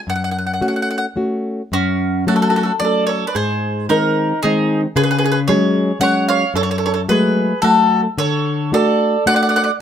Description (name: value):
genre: italian folk, Italian serenade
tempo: 111 BPM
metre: 3/4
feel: rubato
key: unclear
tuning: A4 = 444 Hz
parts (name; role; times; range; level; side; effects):
- mandolin; melody; 0.1-9.7 s; F#4 to F#5; -19 LUFS; left 1 dB; plate reverb
- nylon-string guitar; accompaniment; 0.1-9.7 s; F#2 to F#4; -18 LUFS; left 2 dB; none
- bowl-back mandolin; second line; 1.7-9.7 s; C#4 to D5; -21 LUFS; right 5 dB; none
room: moderate small room reverb, RT60 0.6 s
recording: close, detailed microphones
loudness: -14 LUFS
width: side -9 dB against mid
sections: 0.0-1.7 A section; 1.7-9.8 A section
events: none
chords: 0.1 F#m; 3.4 G#; 5.0 C#sus4; 6.5 F#madd9; 8.2 D